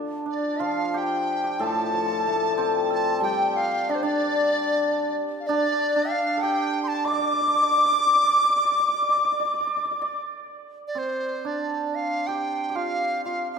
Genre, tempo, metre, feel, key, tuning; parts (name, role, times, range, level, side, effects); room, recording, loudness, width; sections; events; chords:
chinese traditional, Chinese chamber ensemble; 93 BPM; 4/4; rubato; D yu mode; A4 = 441 Hz
hammered dulcimer; second line; 0.0-13.6 s; C4 to D5; -28 LUFS; right 5 dB
hammered dulcimer; accompaniment; 0.0-5.1 s; A2 to A4; -29 LUFS; left 6 dB
bright reedy large dizi; melody; 0.3-13.6 s; C5 to D6; -25 LUFS; right 1 dB
reedy large dizi; second line; 0.3-10.3 s; D5 to D6; -26 LUFS; left 5 dB
wet concert hall reverb, RT60 2.4 s; minimal, uncompressed stereo recording; -21 LUFS; side -6 dB against mid
0.6-10.9 A section; 10.9-13.6 B section